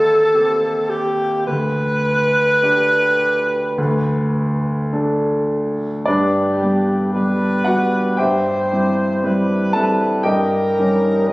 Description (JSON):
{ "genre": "classical, romantic duo for alto saxophone and grand piano", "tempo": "52-59 BPM", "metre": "4/4", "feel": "rubato", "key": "G major", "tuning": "A4 = 438 Hz", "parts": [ { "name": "mellow alto saxophone", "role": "melody", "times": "0.0-11.3 s", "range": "G4 to Eb5", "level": "-18 LUFS", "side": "equal", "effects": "none" }, { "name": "clear baby grand piano", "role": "accompaniment", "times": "0.0-11.3 s", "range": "D2 to A5", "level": "-18 LUFS", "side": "equal", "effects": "none" } ], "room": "wet recital hall reverb, RT60 1.4 s", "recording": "recorded on a phone in the room, studio reverb, compression", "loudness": "-15 LUFS", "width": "side -20 dB against mid", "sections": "0.0-6.1 A section; 6.1-11.3 B section", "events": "none", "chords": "0.0 Cm/Eb; 1.5 G/D; 3.8 D5; 6.1 G; 8.2 C/G; 10.3 Eb7/G", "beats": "0.35 | 1.47 2.62 3.77 4.92 | 6.05 7.13 8.18 9.23 | 10.25 11.27" }